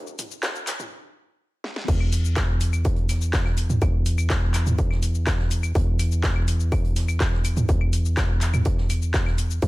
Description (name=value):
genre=melodic techno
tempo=124 BPM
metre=4/4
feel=straight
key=unclear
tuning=A4 = 443 Hz
part: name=techno drum kit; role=drums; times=0.1-9.7 s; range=claves, crash cymbal, handclaps, hi-hat, shaker, snare drum, toms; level=-28 LUFS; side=equal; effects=sidechain pumping on toms, sidechain pumping on perc, sidechain pumping on hats, sidechain pumping on cymbals
part: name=vintage drum kit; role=drums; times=0.2-9.7 s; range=hi-hat, snare drum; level=-42 LUFS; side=right 2 dB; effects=high-pass filter on hats, high-pass filter on snare, high-pass filter on room
part: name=electronic kick drum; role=drums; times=0.4-9.7 s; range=none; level=-24 LUFS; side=equal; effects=distortion, high-pass filter on kick, high-pass filter on room
part: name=tight sequencer bass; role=bass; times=1.9-9.7 s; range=D2 to E2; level=-23 LUFS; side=equal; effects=sidechain pumping
room=little or no reverb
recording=high-pass filter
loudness=-20 LUFS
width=side -20 dB against mid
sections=0.0-1.9 A section; 1.9-9.7 B section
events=build-up 0.0-1.9; stop 0.9-1.9; drum fill 1.6; drop 1.9-9.7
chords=none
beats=0.43 0.91 1.40 | 1.88 2.37 2.85 3.33 | 3.82 4.30 4.79 5.27 | 5.75 6.24 6.72 7.21 | 7.69 8.17 8.66 9.14 | 9.62